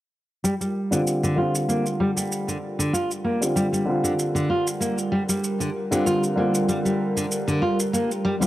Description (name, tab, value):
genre	organic downtempo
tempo	96 BPM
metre	4/4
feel	swing 54% on 16ths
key	G minor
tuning	A4 = 441 Hz
part	warm analog pad	sustained chords	0.4-8.5 s	G3 to Bb4	-29 LUFS	right 1 dB	chorus, tremolo
part	nylon-string guitar	arpeggios	0.4-8.5 s	D3 to F4	-24 LUFS	equal	low-pass filter, tape echo
part	shaker	drums	0.4-8.5 s	none	-30 LUFS	right 1 dB	overdrive
part	felt-muted upright piano	accompaniment	0.9-8.5 s	D3 to F4	-26 LUFS	equal	low-pass filter, tape echo
room	light reverb, studio reverb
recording	dry, gritty hardware recording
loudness	-21 LUFS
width	side -15 dB against mid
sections	0.4-8.5 A section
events	filter sweep on nylon-string guitar 0.4-8.5; filter sweep on felt piano 0.4-8.5; filter sweep on analog synth pad 0.4-8.5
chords	0.4 Gm7